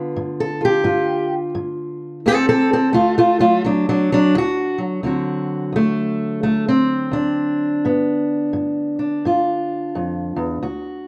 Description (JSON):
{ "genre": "acoustic country blues, solo or duo", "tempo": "86 BPM", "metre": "4/4", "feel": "swing 62% on 8ths", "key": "D mixolydian", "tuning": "A4 = 440 Hz", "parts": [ { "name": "fingerpicked steel-string acoustic guitar", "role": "solo", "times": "0.0-11.1 s", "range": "D2 to B4", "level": "-19 LUFS", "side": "equal", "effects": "none" } ], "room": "light reverb, small room ambience", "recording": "dark, warm production", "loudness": "-19 LUFS", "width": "mono", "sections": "0.0-5.0 A section; 5.0-11.1 B section", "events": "steel-string acoustic guitar solo 0.0-5.0", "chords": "0.0 G7; 2.2 D7; 7.8 G7" }